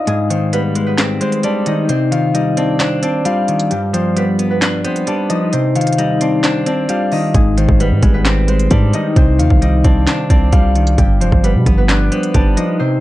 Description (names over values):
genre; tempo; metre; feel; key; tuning
hip hop, trap; 132 BPM; 4/4; half-time; C harmonic minor; A4 = 441 Hz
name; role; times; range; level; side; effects
concert harp; melody; 0.0-13.0 s; G3 to F5; -18 LUFS; left 1 dB; ping-pong delay
semi-hollow electric guitar; accompaniment; 0.1-13.0 s; G2 to D4; -17 LUFS; left 1 dB; none
trap drum kit; drums; 0.1-12.7 s; handclaps, hi-hat, kick drum, snare drum; -16 LUFS; equal; vintage 12-bit sampler grit
long sustained 808-style bass; bass; 7.3-12.6 s; F1 to B2; -14 LUFS; equal; none
room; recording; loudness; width
digital ambience; dark, warm production; -12 LUFS; side -16 dB against mid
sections
0.0-13.0 A section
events
break 0.1-7.3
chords
0.1 Abmaj7; 1.9 Cmadd9; 3.7 G7; 5.5 Cmadd9; 7.3 Abmaj7; 9.2 Cmadd9; 11.0 G7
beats
| 0.07 0.53 0.98 1.44 | 1.89 2.35 2.80 3.25 | 3.71 4.16 4.62 5.07 | 5.53 5.98 6.44 6.89 | 7.35 7.80 8.26 8.71 | 9.16 9.62 10.07 10.53 | 10.98 11.44 11.89 12.35 | 12.80